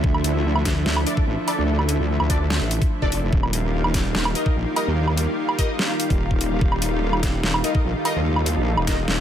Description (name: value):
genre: heavy wobble dubstep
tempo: 146 BPM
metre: 4/4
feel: half-time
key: unclear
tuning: A4 = 440 Hz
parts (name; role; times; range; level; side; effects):
- lush unison pad; sustained chords; 0.0-9.2 s; D3 to F4; -28 LUFS; equal; chorus, sidechain pumping
- wobble bass; bass; 0.0-9.2 s; Eb1 to Eb2; -22 LUFS; equal; chorus, overdrive
- electronic kick drum; drums; 0.0-9.0 s; none; -22 LUFS; equal; none
- ethereal airy pad; texture; 0.0-9.2 s; F3 to Bb5; -29 LUFS; equal; ensemble chorus, built-in reverb, sidechain pumping
- dubstep drum kit; drums; 0.1-9.2 s; hi-hat, snare drum, woodblock; -25 LUFS; right 1 dB; overdrive
- orchestra-hit-like synth stab; stabs; 1.1-9.1 s; D4 to Eb5; -30 LUFS; left 2 dB; built-in reverb, phaser, dub echo
room: light reverb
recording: none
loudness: -19 LUFS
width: side -10 dB against mid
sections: 0.0-9.2 A section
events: none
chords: 0.0 Dmadd9; 3.3 Ebadd9